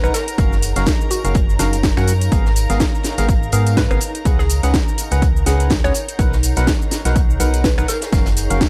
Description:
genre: piano house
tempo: 124 BPM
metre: 4/4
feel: swing 57% on 16ths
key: unclear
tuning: A4 = 441 Hz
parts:
  - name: hollow square pluck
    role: melody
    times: 0.0-8.1 s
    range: D#4 to C#5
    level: -28 LUFS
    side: equal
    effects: chorus, vintage 12-bit sampler grit, tape echo
  - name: clear chamber violin section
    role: sustained chords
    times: 0.0-8.7 s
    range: A#4 to A#5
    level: -34 LUFS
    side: equal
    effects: sidechain pumping
  - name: percussive organ stab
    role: riff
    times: 0.0-8.7 s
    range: G#2 to F#5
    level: -26 LUFS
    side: equal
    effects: subtle chorus, vintage 12-bit sampler grit, sidechain pumping, tape echo
  - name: organ-like FM bass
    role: bass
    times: 0.0-8.6 s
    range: F#1 to G#2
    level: -20 LUFS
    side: equal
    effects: sidechain pumping
  - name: house drum kit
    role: drums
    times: 0.0-8.7 s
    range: cabasa, finger snaps, hi-hat, snare drum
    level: -25 LUFS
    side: equal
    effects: overdrive
  - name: granular cloud pad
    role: texture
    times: 0.0-8.7 s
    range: D#4 to F#5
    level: -34 LUFS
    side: equal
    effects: built-in reverb, sidechain pumping
  - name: open jazz drum kit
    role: drums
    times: 0.1-8.7 s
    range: hi-hat, snare drum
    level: -36 LUFS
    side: equal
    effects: none
  - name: tambourine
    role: percussion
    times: 0.1-8.7 s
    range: none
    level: -36 LUFS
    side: equal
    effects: none
  - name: electronic kick drum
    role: drums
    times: 0.4-8.7 s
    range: none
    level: -20 LUFS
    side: equal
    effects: overdrive
room: small room ambience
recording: dry, gritty hardware recording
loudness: -17 LUFS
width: mono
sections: 0.0-8.7 A section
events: none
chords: 0.1 F#maj7; 2.3 G#m69; 4.0 C#7sus4; 5.9 Bmaj7; 7.9 F#maj7

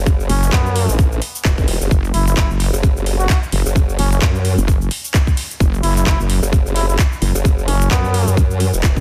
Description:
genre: bass house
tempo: 130 BPM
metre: 4/4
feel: swing 57% on 16ths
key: F# minor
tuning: A4 = 443 Hz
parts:
  - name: formant-sweep wobble bass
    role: bass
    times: 0.0-9.0 s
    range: E1 to F#2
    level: -20 LUFS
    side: equal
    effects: chorus, overdrive, sidechain pumping
  - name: electronic kick drum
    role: drums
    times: 0.1-9.0 s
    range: none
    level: -17 LUFS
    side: equal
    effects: studio reverb
  - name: garage drum kit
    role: drums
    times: 0.1-9.0 s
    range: cabasa, handclaps, hi-hat, toms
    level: -26 LUFS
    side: equal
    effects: studio reverb
  - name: trumpet with cup mute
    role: melody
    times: 0.3-8.4 s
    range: B3 to F#4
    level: -28 LUFS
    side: equal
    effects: delay
  - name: wobble bass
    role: bass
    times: 0.3-7.9 s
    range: F#1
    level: -18 LUFS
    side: equal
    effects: chorus, tube saturation, sidechain pumping
room: little or no reverb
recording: dense, heavily limited modern master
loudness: -16 LUFS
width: mono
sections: 0.0-9.0 A section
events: none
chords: none

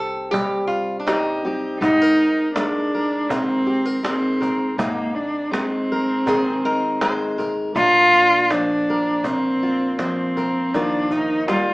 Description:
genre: acoustic folk duo or small band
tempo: 81 BPM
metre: 4/4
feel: straight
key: unclear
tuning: A4 = 443 Hz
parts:
  - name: lap resonator guitar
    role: second line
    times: 0.0-1.8, 6.3-7.5 s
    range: D4 to C5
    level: -23 LUFS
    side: equal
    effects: none
  - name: fingerpicked steel-string acoustic guitar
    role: accompaniment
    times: 0.0-11.7 s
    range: Ab2 to Bb4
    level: -25 LUFS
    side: left 1 dB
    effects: none
  - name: upright bass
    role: bass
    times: 0.0-11.7 s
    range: Ab1 to Eb2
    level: -38 LUFS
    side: equal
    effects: none
  - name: cajon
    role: percussion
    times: 0.1-11.7 s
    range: none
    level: -28 LUFS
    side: right 1 dB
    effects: none
  - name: warm cello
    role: melody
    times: 1.8-11.7 s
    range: Bb3 to F4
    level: -18 LUFS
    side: equal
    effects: none
room: wet studio reverb, RT60 0.8 s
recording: band playing live in one room, small speaker sound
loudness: -17 LUFS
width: side -23 dB against mid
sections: 0.0-1.8 A section; 1.8-11.7 B section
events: none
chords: 0.0 Cm; 1.8 Abadd9; 7.8 Bbadd9; 10.7 Ebadd9

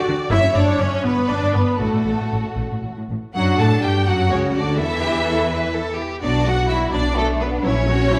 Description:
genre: quick classical-period movement for string orchestra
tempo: 76-86 BPM (dotted quarters)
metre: 6/8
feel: rubato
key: D major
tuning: A4 = 440 Hz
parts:
  - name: rich studio violin section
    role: melody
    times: 0.0-8.2 s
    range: F#4 to A5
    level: -28 LUFS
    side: equal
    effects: none
  - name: rich studio viola section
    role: accompaniment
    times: 0.0-8.2 s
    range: C#3 to E4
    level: -26 LUFS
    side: equal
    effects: none
  - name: clear studio cello section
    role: bass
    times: 0.1-8.2 s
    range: F#2 to B4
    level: -27 LUFS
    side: equal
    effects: none
  - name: rich studio double bass section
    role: bass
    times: 0.1-8.2 s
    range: F#1 to A2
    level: -25 LUFS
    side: equal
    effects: none
  - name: rich studio violin section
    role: second line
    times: 0.3-8.2 s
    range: A3 to E5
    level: -26 LUFS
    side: equal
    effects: none
room: wet scoring stage reverb, RT60 2.0 s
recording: dark, warm production, faint mains hum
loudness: -20 LUFS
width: mono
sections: 0.0-3.4 A section; 3.4-8.2 B section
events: none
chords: 0.3 Dmaj9/F#; 1.1 G; 1.8 F#m/A; 3.4 D/F#; 4.8 A5/E; 5.5 Emadd11; 6.2 Bm; 7.6 F#7/A#

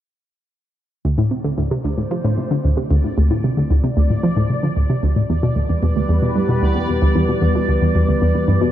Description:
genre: ambient, sequencer-driven space music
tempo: 113 BPM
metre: 4/4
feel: straight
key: unclear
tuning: A4 = 438 Hz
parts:
  - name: sweeping resonant pad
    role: sustained chords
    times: 1.0-8.7 s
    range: D3 to D5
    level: -23 LUFS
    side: equal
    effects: chorus
  - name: analog pluck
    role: riff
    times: 1.0-8.7 s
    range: D2 to F3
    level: -16 LUFS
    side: equal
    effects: chorus, tape echo
  - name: bubbling stepped-filter texture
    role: texture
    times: 1.6-8.7 s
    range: D5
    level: -30 LUFS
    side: right 3 dB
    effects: chorus, built-in reverb
room: moderate lush hall reverb, RT60 2.6 s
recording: dreamy mix soaked in reverb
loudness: -16 LUFS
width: side -12 dB against mid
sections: 1.1-8.7 A section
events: fade-in on analog synth pad 1.1-8.7; fade-in on synth texture 1.1-8.7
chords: 1.1 Dm7; 5.3 Em

